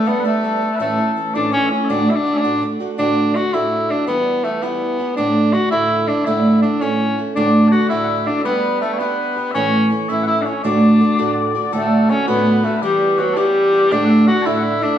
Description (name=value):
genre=celtic folk, Celtic jig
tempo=110 BPM (dotted quarters)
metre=6/8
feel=straight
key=D major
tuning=A4 = 441 Hz
part: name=warm tenor saxophone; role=melody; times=0.0-15.0 s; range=F#3 to F#4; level=-18 LUFS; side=left 1 dB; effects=none
part: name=mellow small bagpipes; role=second line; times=0.0-2.6, 7.4-15.0 s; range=F#4 to A5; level=-23 LUFS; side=left 5 dB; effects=none
part: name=picked old ladder-braced acoustic guitar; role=accompaniment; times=0.0-15.0 s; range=D2 to G4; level=-18 LUFS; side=right 2 dB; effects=none
room=wet large studio reverb, RT60 1.2 s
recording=band playing live in one room, nothing above 10.7 kHz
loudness=-14 LUFS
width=side -10 dB against mid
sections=0.0-3.0 A section; 3.0-11.7 B section; 11.7-15.0 B section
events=none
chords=0.0 Gadd9; 0.8 A; 1.9 D; 4.1 Em; 5.2 Dsus2; 6.3 Asus4; 6.8 A; 7.4 D; 8.5 G; 9.5 A; 10.6 D; 12.8 Em; 13.9 Dsus2